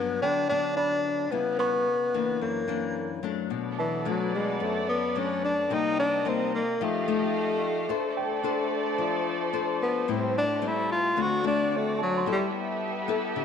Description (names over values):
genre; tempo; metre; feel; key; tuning
bossa nova; 110 BPM; 4/4; straight; unclear; A4 = 436 Hz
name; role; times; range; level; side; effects
warm tenor saxophone; melody; 0.0-12.5 s; E3 to F#4; -27 LUFS; left 1 dB; slapback echo
nylon-string guitar; accompaniment; 0.0-13.4 s; F#2 to C5; -30 LUFS; left 9 dB; none
warm grand piano; accompaniment; 0.0-13.4 s; G5 to D6; -37 LUFS; right 12 dB; none
muted studio violin section; sustained chords; 3.5-13.4 s; A3 to F5; -32 LUFS; right 2 dB; none
room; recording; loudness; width
moderate plate reverb, RT60 2.4 s; 1960s-style stereo with parts hard left and right; -25 LUFS; side -7 dB against mid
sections
0.0-3.5 A section; 3.5-13.4 B section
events
tenor saxophone solo 3.5-13.4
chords
0.0 Gmaj7; 1.3 C#m7b5; 2.4 F#7b13; 3.5 Bm7; 5.7 Cm7; 6.8 F9; 7.9 F69; 10.1 Am7; 11.2 D7; 12.3 G69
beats
0.23 0.77 | 1.32 1.87 2.42 2.96 | 3.51 4.06 4.61 5.15 | 5.70 6.25 6.80 7.34 | 7.89 8.44 8.99 9.53 | 10.08 10.63 11.18 11.72 | 12.27 12.81 13.36